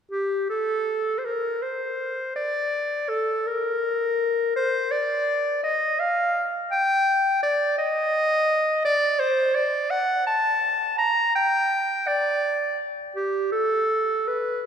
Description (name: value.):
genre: classical, baroque-style fantasia for unaccompanied clarinet.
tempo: 55 BPM (dotted quarters).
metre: 6/8.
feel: rubato.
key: G minor.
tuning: A4 = 440 Hz.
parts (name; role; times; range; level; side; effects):
clear clarinet; solo; 0.1-14.7 s; G4 to Bb5; -21 LUFS; equal; none.
room: wet church reverb, RT60 2.9 s.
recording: recorded in a church or concert hall.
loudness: -21 LUFS.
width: side -7 dB against mid.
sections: 0.1-14.7 A section.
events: none.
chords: none.